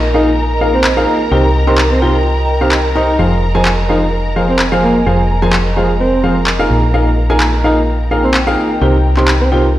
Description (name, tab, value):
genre	piano house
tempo	128 BPM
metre	4/4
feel	straight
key	F minor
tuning	A4 = 440 Hz
part	warm symphonic violin section	sustained chords	0.0-9.8 s	Bb4 to Bb5	-22 LUFS	right 1 dB	low-pass filter
part	solid FM bass	bass	0.0-9.8 s	F1 to C2	-15 LUFS	equal	none
part	airy breathy pad	texture	0.0-9.8 s	Bb4 to Ab5	-22 LUFS	equal	chorus
part	breathy tenor saxophone	melody	0.1-9.7 s	Ab3 to F4	-18 LUFS	equal	digital delay
part	clear grand piano	riff	0.1-9.7 s	C3 to C6	-15 LUFS	equal	digital delay
part	electronic handclaps	drums	0.8-9.4 s	none	-18 LUFS	equal	none
room	light reverb, small room ambience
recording	played on a big sound system in a bare room, stone room reverb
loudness	-10 LUFS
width	side -14 dB against mid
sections	0.0-9.8 A section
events	none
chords	0.0 Bb7sus4; 1.3 Cm7; 3.2 Fm; 6.7 Bb7sus4; 8.8 Cm7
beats	0.38 0.85 | 1.31 1.78 2.25 2.72 | 3.19 3.66 4.13 4.60 | 5.07 5.53 6.00 6.47 | 6.94 7.41 7.88 8.35 | 8.81 9.28 9.75